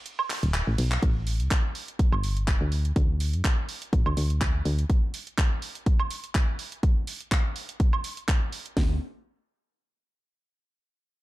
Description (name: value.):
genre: piano house.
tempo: 124 BPM.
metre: 4/4.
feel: swing 54% on 16ths.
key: unclear.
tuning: A4 = 441 Hz.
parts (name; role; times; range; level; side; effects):
house drum kit; drums; 0.1-8.7 s; handclaps, hi-hat, ride cymbal, woodblock; -32 LUFS; right 2 dB; none.
solid FM bass; bass; 0.4-4.8, 8.8-9.0 s; D1 to F#2; -25 LUFS; equal; sidechain pumping.
house drum kit; drums; 1.0-8.9 s; hi-hat, kick drum, snare drum; -23 LUFS; equal; none.
room: little or no reverb.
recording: dark, warm production.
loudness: -24 LUFS.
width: side -18 dB against mid.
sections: 0.0-1.0 A section; 1.0-8.8 B section; 8.8-10.7 C section.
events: drop 0.0-1.0; break 0.1-1.0; drum fill 0.5-1.0.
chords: none.